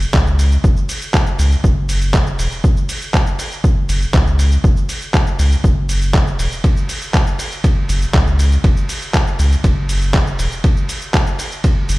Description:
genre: dub techno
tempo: 120 BPM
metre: 4/4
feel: straight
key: unclear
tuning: A4 = 440 Hz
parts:
  - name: warm sub bass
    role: bass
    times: 0.0-12.0 s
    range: E1 to C#2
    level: -15 LUFS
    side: equal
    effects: tube saturation, sidechain pumping
  - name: lo-fi sampler-style drum kit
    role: drums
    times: 0.0-12.0 s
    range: cabasa, handclaps, hi-hat, ride cymbal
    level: -22 LUFS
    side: equal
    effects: none
  - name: electronic kick drum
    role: drums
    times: 0.1-11.7 s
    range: none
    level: -14 LUFS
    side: equal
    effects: overdrive
room: little or no reverb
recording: played on a big sound system in a bare room, stone room reverb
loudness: -13 LUFS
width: side -20 dB against mid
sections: 0.0-12.0 A section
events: none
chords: none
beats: 0.14 | 0.64 1.14 1.64 2.14 | 2.64 3.14 3.64 4.14 | 4.64 5.14 5.64 6.14 | 6.64 7.14 7.64 8.14 | 8.64 9.14 9.64 10.14 | 10.64 11.14 11.64

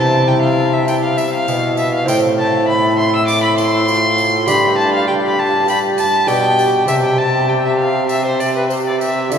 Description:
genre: classical, renaissance-style consort dance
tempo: 100 BPM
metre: 4/4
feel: straight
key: unclear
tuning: A4 = 439 Hz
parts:
  - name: rich violin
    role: melody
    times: 0.0-9.4 s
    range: B4 to E6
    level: -16 LUFS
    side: left 1 dB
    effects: none
  - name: bright trombone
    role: accompaniment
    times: 0.0-9.4 s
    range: E4 to G4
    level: -20 LUFS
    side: right 1 dB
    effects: none
  - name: lute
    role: accompaniment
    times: 0.0-9.4 s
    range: G2 to D5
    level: -21 LUFS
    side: equal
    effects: none
  - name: clear bassoon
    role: bass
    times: 0.0-9.4 s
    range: G2 to D3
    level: -20 LUFS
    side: equal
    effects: none
  - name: tambourine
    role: percussion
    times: 0.9-9.4 s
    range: none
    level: -33 LUFS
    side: right 6 dB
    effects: none
room: wet cathedral reverb, RT60 5.5 s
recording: heard from further back in the room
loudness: -13 LUFS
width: side -7 dB against mid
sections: 0.0-9.4 A section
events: none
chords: 0.0 C; 2.1 Am; 4.5 G; 6.9 C5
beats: 0.28 0.88 1.48 | 2.08 2.68 3.28 3.88 | 4.48 5.08 5.68 6.28 | 6.89 7.49 8.10 8.70 | 9.32

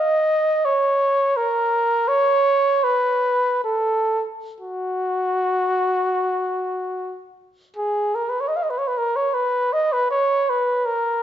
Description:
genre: classical, free, expressive piece for unaccompanied trumpet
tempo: 43-86 BPM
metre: 3/4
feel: rubato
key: unclear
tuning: A4 = 440 Hz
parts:
  - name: mellow trumpet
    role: solo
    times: 0.0-11.2 s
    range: F#4 to E#5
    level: -18 LUFS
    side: equal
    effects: none
room: moderate recital hall reverb, RT60 1.5 s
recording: nothing above 7.8 kHz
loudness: -18 LUFS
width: side -10 dB against mid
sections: 0.0-7.8 A section; 7.8-11.2 A section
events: none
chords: none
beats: 0.64 1.36 | 2.07 2.83 3.64 | 4.60 5.62 6.65 | 7.78 8.58 9.36 | 10.12 10.88

